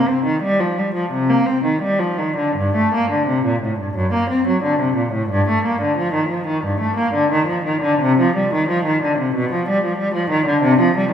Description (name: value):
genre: classical, baroque-style suite movement for unaccompanied cello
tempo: 90 BPM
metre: 4/4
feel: uneven beats, rubato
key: G minor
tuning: A4 = 440 Hz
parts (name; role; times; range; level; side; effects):
- warm cello; solo; 0.0-11.1 s; F#2 to C4; -16 LUFS; equal; none
room: wet recital hall reverb, RT60 1.4 s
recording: recorded in a church or concert hall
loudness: -16 LUFS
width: side -8 dB against mid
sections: 0.0-2.6 A section; 2.6-11.1 A section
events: none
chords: none